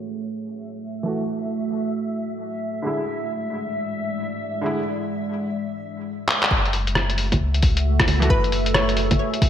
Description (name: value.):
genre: future garage.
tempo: 134 BPM.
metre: 4/4.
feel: swing 64% on 16ths.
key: F# minor.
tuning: A4 = 440 Hz.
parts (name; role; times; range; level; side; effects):
deep dark ambient pad; sustained chords; 0.0-9.5 s; G#3 to E5; -28 LUFS; right 2 dB; chorus, built-in reverb, sidechain pumping.
backwards swelling texture; texture; 0.7-6.1 s; E5; -33 LUFS; equal; built-in reverb, lush chorus.
felt-muted upright piano; accompaniment; 1.0-4.8, 8.2-8.4 s; D3 to F#4; -29 LUFS; equal; sidechain pumping, ping-pong delay.
lo-fi sampler-style drum kit; drums; 6.3-9.5 s; bongos, handclaps, hi-hat, rim click; -21 LUFS; equal; low-pass filter on hats, small room ambience, low-pass filter on snare, low-pass filter on perc, gated reverb.
warm sub bass; bass; 6.5-9.2 s; F#1 to C#2; -22 LUFS; equal; sidechain pumping.
electronic kick drum; drums; 6.5-9.5 s; none; -21 LUFS; equal; small room ambience.
hollow square pluck; melody; 8.3-9.2 s; B4 to C#5; -25 LUFS; left 1 dB; chorus, cassette tape, digital delay.
room: moderate lush hall reverb, RT60 1.9 s, digital ambience.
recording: bright 1980s-style digital production, low-pass filter.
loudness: -21 LUFS.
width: side -10 dB against mid.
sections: 0.0-6.5 A section; 6.5-9.5 B section.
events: filter sweep on drum 0.0-6.5; filter sweep on ambient pad 0.0-6.5; filter sweep 0.0-6.5; drum fill 6.3.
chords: 0.0 F#m7; 2.9 E7; 6.5 F#m7.